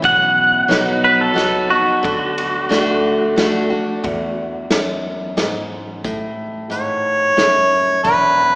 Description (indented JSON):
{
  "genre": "honky-tonk and classic country",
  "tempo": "90 BPM",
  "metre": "3/4",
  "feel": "straight",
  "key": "A major",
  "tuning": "A4 = 440 Hz",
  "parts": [
    { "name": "picked steel-string acoustic guitar", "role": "accompaniment", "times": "0.0-8.6 s", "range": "E2 to F#4", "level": "-20 LUFS", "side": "equal", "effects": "none" },
    { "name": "upright bass", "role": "bass", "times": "0.0-8.6 s", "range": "E1 to E2", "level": "-34 LUFS", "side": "equal", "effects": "none" },
    { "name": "unplugged drum kit", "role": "drums", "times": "0.0-8.2 s", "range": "hi-hat, kick drum, ride cymbal, snare drum", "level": "-23 LUFS", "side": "equal", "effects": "none" },
    { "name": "twangy electric guitar", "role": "second line", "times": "0.1-3.7 s", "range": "F#4 to F#5", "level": "-15 LUFS", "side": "equal", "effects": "none" },
    { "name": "mellow harmonica", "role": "melody", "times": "6.7-8.6 s", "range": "B4 to C#5", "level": "-13 LUFS", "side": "equal", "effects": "none" }
  ],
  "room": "wet church reverb, RT60 3.4 s",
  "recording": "recorded in a church or concert hall, small speaker sound",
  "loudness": "-14 LUFS",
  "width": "side -26 dB against mid",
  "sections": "0.0-6.0 A section; 6.0-8.6 B section",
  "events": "clean electric guitar solo 0.0-6.0",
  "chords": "0.0 B; 2.0 D; 4.0 E; 6.0 A; 8.0 E5"
}